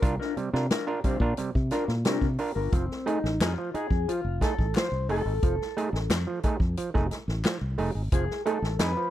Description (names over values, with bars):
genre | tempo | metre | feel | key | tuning
funk | 89 BPM | 4/4 | straight | F mixolydian | A4 = 440 Hz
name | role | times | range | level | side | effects
mellow electric guitar | accompaniment | 0.0-9.1 s | C4 to C5 | -32 LUFS | left 3 dB | phaser
overdriven clav | stabs | 0.0-9.1 s | C3 to Bb4 | -30 LUFS | right 4 dB | none
fingered electric bass | bass | 0.0-8.9 s | F1 to C3 | -29 LUFS | equal | none
swinging big-band drum kit | drums | 0.0-9.0 s | hi-hat, kick drum, snare drum | -28 LUFS | equal | none
group handclap | percussion | 3.4-9.0 s | none | -39 LUFS | left 5 dB | none
room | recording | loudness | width
small room ambience | dry, close 1970s-style studio recording | -25 LUFS | side -13 dB against mid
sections
0.0-2.7 A section; 2.7-9.1 B section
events
clean electric guitar solo 2.7-9.1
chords
0.0 C9sus4; 2.7 F7#9